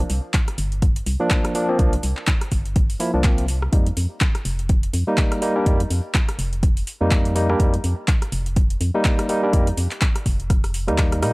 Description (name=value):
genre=deep house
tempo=124 BPM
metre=4/4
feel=swing 58% on 16ths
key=unclear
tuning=A4 = 441 Hz
part: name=organ-like FM bass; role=bass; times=0.0-11.3 s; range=F1 to Bb2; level=-23 LUFS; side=equal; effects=sidechain pumping
part: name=deep house drum kit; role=drums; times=0.1-11.3 s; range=handclaps, hi-hat, rim click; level=-27 LUFS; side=equal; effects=none
part: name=electronic kick drum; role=drums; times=0.3-11.1 s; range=none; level=-19 LUFS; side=equal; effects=none
part: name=barky tine electric piano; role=stabs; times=1.2-11.3 s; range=F3 to E4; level=-22 LUFS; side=equal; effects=medium stereo tremolo, sidechain pumping, analog delay
room=digital ambience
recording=dry, gritty hardware recording, vinyl crackle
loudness=-18 LUFS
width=side -25 dB against mid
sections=0.0-11.3 A section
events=drum fill 10.5-11.3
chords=0.0 C9sus4; 3.7 F9sus4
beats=0.34 0.82 1.31 | 1.79 2.27 2.76 3.24 | 3.73 4.21 4.69 5.18 | 5.66 6.15 6.63 7.11 | 7.60 8.08 8.56 9.05 | 9.53 10.02 10.50 10.98